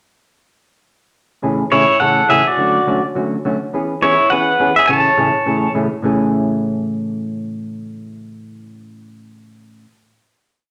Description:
country; 208 BPM; 4/4; swing 62% on 8ths; A major; A4 = 439 Hz
hollow-body jazz guitar; accompaniment; 1.4-9.9 s; A2 to G#4; -21 LUFS; equal
pedal steel guitar; melody; 1.7-5.7 s; E4 to A5; -15 LUFS; equal
wet large studio reverb, RT60 0.9 s; -16 LUFS; mono
1.4-6.0 A section; 6.0-8.4 final chord
1.4 Amaj7; 2.6 Dmaj7; 3.7 E6; 4.9 Amaj7
| 1.43 1.72 2.00 2.29 | 2.58 2.87 3.16 3.45 | 3.73 4.02 4.31 4.60 | 4.89 5.18 5.46 5.75 | 6.04 6.33 6.62 6.91 | 7.20 7.49 7.78 8.07

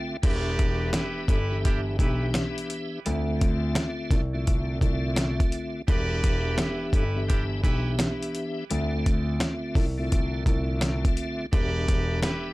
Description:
hip hop, boom-bap hip-hop; 85 BPM; 4/4; swing 63% on 16ths; E phrygian; A4 = 440 Hz
tonewheel organ; accompaniment; 0.0-12.5 s; D3 to E5; -31 LUFS; left 1 dB; chorus vibrato, slow rotary speaker, cassette tape, high-pass filter, low-pass filter
muted trumpet section; stabs; 0.2-12.5 s; D4 to D5; -34 LUFS; right 2 dB; high-pass filter, low-pass filter, ping-pong delay
dark concert grand piano; bass; 0.2-12.2 s; E1 to D2; -28 LUFS; equal
dusty soul sampler-style drum kit; drums; 0.2-12.4 s; crash cymbal, hi-hat, kick drum, snare drum; -24 LUFS; equal
little or no reverb; dark, warm production; -23 LUFS; side -20 dB against mid
0.2-12.5 A section
0.2 Em7; 3.1 Dm7; 5.9 Em7; 8.7 Dm7; 11.5 Em7
| 0.23 0.94 1.65 2.35 | 3.06 3.76 4.47 5.17 | 5.88 6.59 7.29 8.00 | 8.70 9.41 10.12 10.82 | 11.53 12.23

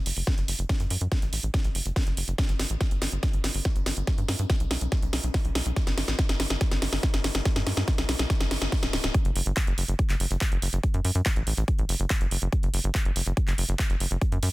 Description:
psychedelic trance; 142 BPM; 4/4; straight; A4 = 439 Hz
tight sequencer bass; bass; 0.1-14.5 s; D1 to G2; -28 LUFS; equal
techno drum kit; drums; 0.1-14.5 s; handclaps, hi-hat, snare drum; -29 LUFS; equal
electronic kick drum; drums; 0.3-14.3 s; -25 LUFS; equal
light reverb; dense, heavily limited modern master; -24 LUFS; side -19 dB against mid
0.0-9.1 A section; 9.1-14.5 B section
build-up 0.0-9.1; drum fill 0.0-9.1; drop 9.1-14.5
0.27 | 0.69 1.12 1.54 1.96 | 2.38 2.81 3.23 3.65 | 4.07 4.50 4.92 5.34 | 5.76 6.19 6.61 7.03 | 7.46 7.88 8.30 8.72 | 9.14 9.57 9.99 10.41 | 10.84 11.26 11.68 12.10 | 12.53 12.95 13.37 13.79 | 14.21

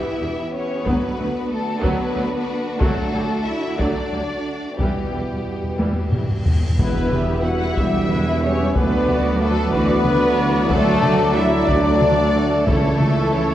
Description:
cinematic, epic orchestral film score; 61 BPM (dotted quarters); 6/8; straight; E dorian; A4 = 440 Hz
warm symphonic violin section; melody; 0.0-13.5 s; G4 to F#5; -29 LUFS; left 4 dB
rich studio violin section; second line; 0.0-13.5 s; B3 to F#5; -29 LUFS; left 2 dB
rich symphonic viola section; accompaniment; 0.0-13.5 s; E3 to E5; -28 LUFS; equal
bright trombone section; sustained chords; 0.0-13.5 s; B2 to F#4; -29 LUFS; right 3 dB
warm French horn section; sustained chords; 0.0-13.5 s; A3 to F#4; -25 LUFS; left 2 dB
rich symphonic cello section; bass; 0.0-13.5 s; D3 to E4; -26 LUFS; right 2 dB
mellow tuba; bass; 0.2-13.5 s; E1 to D2; -27 LUFS; right 3 dB
rich symphonic double bass section; bass; 0.2-13.5 s; C#2 to E2; -25 LUFS; right 2 dB
taiko ensemble; drums; 0.9-13.3 s; -24 LUFS; equal
timpani; percussion; 4.8-7.7 s; E2; -26 LUFS; equal
cymbal swell and impact; sound effects; 6.1-8.8 s; -34 LUFS; equal
hollow small flute group; second line; 6.8-13.5 s; A4 to F#5; -30 LUFS; left 3 dB
rich symphonic string section; sustained chords; 6.8-13.5 s; G3 to E5; -29 LUFS; left 1 dB
dark trumpet section; stabs; 6.8-13.5 s; C#5 to E5; -28 LUFS; right 2 dB
wet concert hall reverb, RT60 2.0 s; worn, warbling old tape, cassette tape, warbly pitch drift; -17 LUFS; side -12 dB against mid
0.0-6.8 A section; 6.8-13.5 A section
timpani fill 4.8-6.8; drum fill 5.8-6.8; cymbal swell 6.1-6.8; impact 6.8-8.8
0.0 Em; 0.9 Bm/D; 2.8 D; 4.8 Em; 8.8 Bm/D; 10.7 D; 12.7 A/C#
| 0.87 1.84 | 2.81 3.80 | 4.79 5.79 | 6.79 7.78 | 8.76 9.74 | 10.71 11.69 | 12.67

